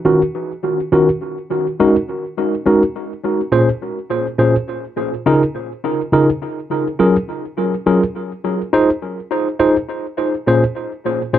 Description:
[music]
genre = reggae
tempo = 69 BPM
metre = 4/4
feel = swing 61% on 16ths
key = unclear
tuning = A4 = 441 Hz
[part]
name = mellow tine electric piano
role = solo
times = 0.0-11.4 s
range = Bb2 to C5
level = -15 LUFS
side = equal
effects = medium stereo tremolo, tape echo
[sound]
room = wet small room reverb, RT60 0.5 s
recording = none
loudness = -15 LUFS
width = side -11 dB against mid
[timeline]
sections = 0.0-3.1 A section; 3.1-11.4 B section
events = none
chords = 0.0 Ebm9; 1.4 Ab9sus4; 3.1 Bbm9; 4.8 Db69; 6.6 Gbmaj9; 8.3 Fm7; 10.0 Bbm9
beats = 0.48 1.35 2.22 | 3.09 3.96 4.83 5.70 | 6.56 7.43 8.30 9.16 | 10.03 10.90

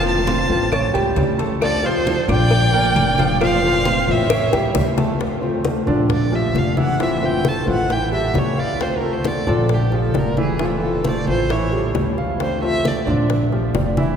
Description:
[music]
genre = latin, Cuban son and guajira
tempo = 134 BPM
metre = 4/4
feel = straight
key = D minor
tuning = A4 = 440 Hz
[part]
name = warm violin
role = melody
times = 0.0-13.1 s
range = G4 to A5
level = -23 LUFS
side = right 1 dB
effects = none
[part]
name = bright studio violin section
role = second line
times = 0.0-4.8 s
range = A4 to F5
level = -30 LUFS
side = equal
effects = none
[part]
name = fingerpicked old ladder-braced acoustic guitar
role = accompaniment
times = 0.0-14.2 s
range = C3 to G4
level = -25 LUFS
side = left 4 dB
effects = none
[part]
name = warm concert grand piano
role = arpeggios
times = 0.0-14.2 s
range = D3 to D6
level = -23 LUFS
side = right 3 dB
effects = none
[part]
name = upright bass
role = bass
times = 0.0-14.2 s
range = F1 to D2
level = -22 LUFS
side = equal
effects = none
[part]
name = congas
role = percussion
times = 0.1-14.2 s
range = none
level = -24 LUFS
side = left 1 dB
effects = none
[part]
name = cowbell and bongos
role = percussion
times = 0.3-14.2 s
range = none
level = -27 LUFS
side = left 3 dB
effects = none
[part]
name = claves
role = percussion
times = 0.7-4.5 s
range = none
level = -37 LUFS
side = right 1 dB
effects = none
[sound]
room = wet cathedral reverb, RT60 6.5 s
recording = recorded in a church or concert hall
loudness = -16 LUFS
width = side -7 dB against mid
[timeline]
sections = 0.0-5.2 A section; 5.2-14.2 B section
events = drum fill 4.3-5.2; violin solo 5.2-14.2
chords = 0.0 Fmaj7; 0.7 A7; 1.6 Dm7; 2.5 Bb6; 3.4 Fmaj7; 4.3 A7; 5.2 Dm7; 6.1 Bb6; 7.0 Fmaj7; 7.9 A7; 8.8 Dm7; 9.7 Bb6; 10.6 Fmaj7; 11.5 A7; 12.4 Dm7; 13.3 Bb6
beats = 0.27 0.71 1.16 | 1.61 2.06 2.51 2.96 | 3.41 3.86 4.30 4.75 | 5.20 5.65 6.10 6.55 | 7.00 7.45 7.90 8.35 | 8.80 9.25 9.70 10.15 | 10.60 11.05 11.50 11.95 | 12.40 12.85 13.30 13.75

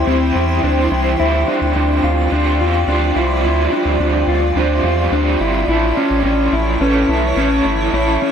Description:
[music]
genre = dream pop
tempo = 107 BPM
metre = 4/4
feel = straight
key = unclear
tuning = A4 = 442 Hz
[part]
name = raw garage guitar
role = accompaniment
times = 0.0-8.3 s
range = A2 to C5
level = -20 LUFS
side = right 4 dB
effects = overdrive, tremolo, wide subtle chorus
[part]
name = granular cloud pad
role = sustained chords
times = 0.0-8.3 s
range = E4 to C#6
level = -20 LUFS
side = right 1 dB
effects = built-in reverb
[part]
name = mellow electric guitar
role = arpeggios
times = 0.0-8.3 s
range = C4 to F4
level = -18 LUFS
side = left 3 dB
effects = wide subtle chorus, tape echo
[part]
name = warm sub bass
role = bass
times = 0.0-8.2 s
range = G1 to E2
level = -19 LUFS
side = equal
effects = none
[part]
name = celesta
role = texture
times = 1.2-8.3 s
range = B4 to G5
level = -28 LUFS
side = right 1 dB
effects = none
[sound]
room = moderate lush hall reverb, RT60 2.5 s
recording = none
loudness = -13 LUFS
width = side -8 dB against mid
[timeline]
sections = 0.0-8.3 A section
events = none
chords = 0.0 C; 1.2 G7sus4; 5.7 A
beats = 0.08 0.64 | 1.20 1.76 2.32 2.88 | 3.44 4.00 4.56 5.12 | 5.68 6.25 6.81 7.37 | 7.93

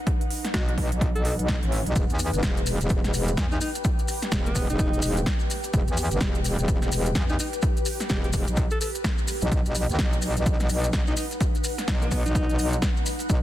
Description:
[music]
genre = bass house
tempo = 127 BPM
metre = 4/4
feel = swing 60% on 16ths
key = E harmonic minor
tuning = A4 = 436 Hz
[part]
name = ethereal airy pad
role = texture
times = 0.0-13.4 s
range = D#4 to G5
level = -34 LUFS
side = left 1 dB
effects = ensemble chorus, built-in reverb, phaser, sidechain pumping
[part]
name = big-room dance drum kit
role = drums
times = 0.1-13.4 s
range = hi-hat, snare drum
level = -32 LUFS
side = right 1 dB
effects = overdrive
[part]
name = electronic kick drum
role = drums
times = 0.1-13.4 s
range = none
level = -25 LUFS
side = equal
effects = overdrive
[part]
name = mellow alto saxophone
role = melody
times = 0.5-12.7 s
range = B3 to A4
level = -34 LUFS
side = left 1 dB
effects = ping-pong delay
[part]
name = metallic wobble bass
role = bass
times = 0.5-13.4 s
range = E1 to E2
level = -26 LUFS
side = equal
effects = chorus, sidechain pumping
[part]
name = maracas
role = percussion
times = 2.0-13.4 s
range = none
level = -35 LUFS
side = left 2 dB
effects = none
[sound]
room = little or no reverb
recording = dense, heavily limited modern master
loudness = -22 LUFS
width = side -14 dB against mid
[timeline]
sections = 0.0-13.4 A section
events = none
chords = 0.0 B; 2.0 Em; 9.5 B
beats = | 0.07 0.54 1.01 1.48 | 1.96 2.43 2.90 3.37 | 3.85 4.32 4.79 5.26 | 5.74 6.21 6.68 7.15 | 7.63 8.10 8.57 9.04 | 9.52 9.99 10.46 10.93 | 11.40 11.88 12.35 12.82 | 13.29

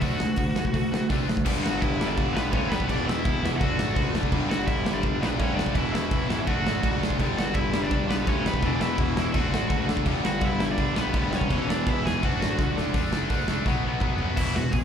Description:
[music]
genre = punk rock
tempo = 167 BPM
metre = 4/4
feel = straight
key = unclear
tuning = A4 = 439 Hz
[part]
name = smooth overdriven lead guitar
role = melody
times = 0.0-14.8 s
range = B3 to G#5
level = -31 LUFS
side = equal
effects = slapback echo
[part]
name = distorted electric guitar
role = riff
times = 0.0-14.8 s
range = E2 to D4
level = -30 LUFS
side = left 12 dB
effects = overdrive, slapback echo
[part]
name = tight distorted guitar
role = riff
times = 0.0-14.8 s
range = E2 to D4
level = -32 LUFS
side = right 13 dB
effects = distortion, slapback echo
[part]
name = fuzz picked electric bass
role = bass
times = 0.0-14.8 s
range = E1 to C3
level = -30 LUFS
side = equal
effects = overdrive
[part]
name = big rock drum kit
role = drums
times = 0.0-14.8 s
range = crash cymbal, hi-hat, kick drum, snare drum, toms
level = -27 LUFS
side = equal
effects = none
[part]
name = raw garage guitar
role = riff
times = 1.5-14.8 s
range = E2 to D4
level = -32 LUFS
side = equal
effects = overdrive, slapback echo
[sound]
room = little or no reverb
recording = live gig heard through the venue's PA, club reverb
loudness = -22 LUFS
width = side -8 dB against mid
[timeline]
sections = 0.0-1.5 A section; 1.5-12.9 B section; 12.9-14.4 C section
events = drum fill 12.6-12.9, 13.7-14.4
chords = 0.0 D; 1.5 G; 2.9 E5; 3.6 D/F#; 4.3 G; 5.8 E; 6.5 D/F#; 7.2 G; 8.6 E5; 9.3 D/F#; 10.1 G; 11.5 E; 12.2 D/F#; 13.7 B5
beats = | 0.02 0.38 0.74 1.10 | 1.46 1.82 2.18 2.54 | 2.89 3.25 3.61 3.97 | 4.33 4.68 5.04 5.40 | 5.76 6.12 6.48 6.84 | 7.20 7.55 7.91 8.27 | 8.63 8.99 9.35 9.71 | 10.07 10.43 10.78 11.14 | 11.50 11.86 12.22 12.58 | 12.94 13.30 13.66 14.02 | 14.38 14.74

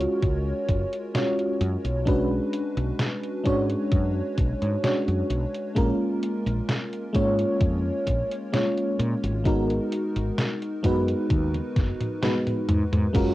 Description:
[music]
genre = vaporwave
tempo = 65 BPM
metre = 4/4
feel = straight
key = unclear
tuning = A4 = 440 Hz
[part]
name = FM electric piano with soft pad layer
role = accompaniment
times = 0.0-13.3 s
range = G#3 to C#5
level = -25 LUFS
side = equal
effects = tremolo, analog chorus, analog delay
[part]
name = woody fretless electric bass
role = bass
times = 0.0-13.3 s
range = F#1 to A#2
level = -27 LUFS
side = equal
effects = none
[part]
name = detuned 8-bit digital drum machine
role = drums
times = 0.0-13.3 s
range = crash cymbal, hi-hat, snare drum, toms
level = -28 LUFS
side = equal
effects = cassette tape
[part]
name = electronic kick drum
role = drums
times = 0.2-13.3 s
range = none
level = -25 LUFS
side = equal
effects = cassette tape
[sound]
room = light reverb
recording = home recording on cassette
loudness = -22 LUFS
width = side -16 dB against mid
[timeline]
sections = 0.0-13.1 A section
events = drum fill 11.3-13.1; band accent 12.2-12.7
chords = 0.0 F#maj7; 2.1 Bm6; 5.8 A#m7; 9.5 G#m9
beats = 0.23 1.15 | 2.07 3.00 3.92 4.84 | 5.76 6.69 7.61 8.53 | 9.46 10.38 11.30 12.23 | 13.15

